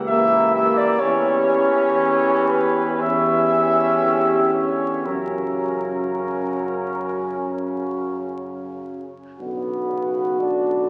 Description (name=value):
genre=classical, hymn-like piece for brass band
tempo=55-64 BPM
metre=4/4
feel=rubato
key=B minor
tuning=A4 = 440 Hz
part: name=mellow French horn section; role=second line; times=0.0-10.9 s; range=F#4 to G4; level=-26 LUFS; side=equal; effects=none
part: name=mellow tuba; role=bass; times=0.0-10.9 s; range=B1 to F#2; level=-32 LUFS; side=equal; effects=none
part: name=mellow flugelhorn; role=melody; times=0.1-10.9 s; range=A#4 to F#5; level=-24 LUFS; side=equal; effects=none
part: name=clear trombone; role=accompaniment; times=0.1-10.9 s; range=C#3 to E3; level=-33 LUFS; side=equal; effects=none
part: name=clear trombone section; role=accompaniment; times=0.1-10.9 s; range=A#3 to D4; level=-29 LUFS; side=equal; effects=none
room=wet cathedral reverb, RT60 4.6 s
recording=very old 78 rpm record, vinyl crackle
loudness=-20 LUFS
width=mono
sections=0.0-9.4 A section; 9.4-10.9 B section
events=none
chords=0.0 C#dim7; 1.0 C#dim/E; 5.1 F#; 9.4 Bm